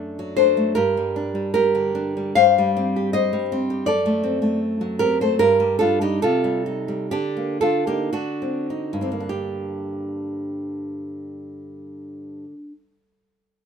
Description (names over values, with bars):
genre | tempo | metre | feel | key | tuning
romantic piece for solo classical guitar | 49-81 BPM | 2/4 | rubato | G minor | A4 = 440 Hz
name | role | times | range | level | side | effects
nylon-string guitar | solo | 0.0-12.8 s | F#2 to F5 | -20 LUFS | equal | none
room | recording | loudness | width
light reverb | minimal, uncompressed stereo recording | -19 LUFS | side -7 dB against mid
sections
0.0-9.3 A section; 9.3-13.7 B section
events
slowing down 4.6-9.3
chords
0.0 D/F#; 0.8 Gm; 2.4 Cm/G; 3.9 D7/F#; 5.4 Gm; 6.2 Cm; 7.1 Gm/D; 8.1 D7b9; 9.3 Gm